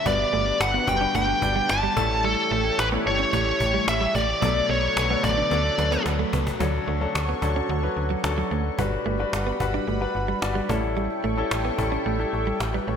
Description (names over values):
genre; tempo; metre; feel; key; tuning
1980s-style pop; 110 BPM; 4/4; straight; D major; A4 = 440 Hz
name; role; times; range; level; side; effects
bluesy overdriven lead guitar; melody; 0.0-6.0 s; A4 to A5; -23 LUFS; equal; distortion
clear concert grand piano; accompaniment; 0.0-13.0 s; F#3 to D5; -28 LUFS; left 4 dB; none
cranked stack guitar; accompaniment; 0.0-7.1 s; G2 to D4; -36 LUFS; left 6 dB; none
phased analog pad; sustained chords; 0.0-13.0 s; D3 to C#6; -33 LUFS; equal; phaser, chorus
direct-recorded clean electric guitar; riff; 0.1-13.0 s; F#3 to D4; -32 LUFS; right 8 dB; wide subtle chorus
slap-like FM bass; bass; 0.1-13.0 s; F#1 to D2; -28 LUFS; equal; none
cajon; drums; 0.1-12.9 s; none; -31 LUFS; equal; none
room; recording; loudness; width
moderate lush hall reverb, RT60 2.0 s; bright 1980s-style digital production; -21 LUFS; side -7 dB against mid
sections
0.0-6.6 A section; 6.6-13.0 B section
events
drum fill 5.5-6.6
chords
0.1 Gmaj7; 2.0 A7; 4.4 Bm7; 5.5 Dmaj7; 8.8 Gmaj7; 10.7 A7